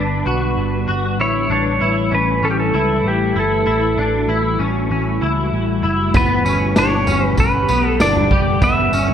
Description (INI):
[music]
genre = dream pop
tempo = 97 BPM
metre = 4/4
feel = straight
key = unclear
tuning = A4 = 440 Hz
[part]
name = pedal steel guitar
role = melody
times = 0.0-9.1 s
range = G4 to E5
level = -20 LUFS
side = right 1 dB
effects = tape echo
[part]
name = ethereal airy pad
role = sustained chords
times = 0.0-9.1 s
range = B2 to F#5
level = -22 LUFS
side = left 1 dB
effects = ensemble chorus, built-in reverb
[part]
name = clean electric guitar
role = arpeggios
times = 0.0-9.1 s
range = B3 to G4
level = -21 LUFS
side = left 2 dB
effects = ensemble chorus, tape echo
[part]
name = vintage muted picked electric bass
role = bass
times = 0.0-9.1 s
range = F#1 to C#2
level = -22 LUFS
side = equal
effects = none
[part]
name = raw garage drum kit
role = drums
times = 6.1-9.1 s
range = kick drum, snare drum, tambourine, toms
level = -19 LUFS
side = equal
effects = none
[sound]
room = moderate plate reverb, RT60 2.2 s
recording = none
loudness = -14 LUFS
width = side -9 dB against mid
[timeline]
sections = 0.0-6.1 A section; 6.1-9.1 B section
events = none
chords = 0.0 Gmaj7; 1.2 A7; 6.1 Gmaj7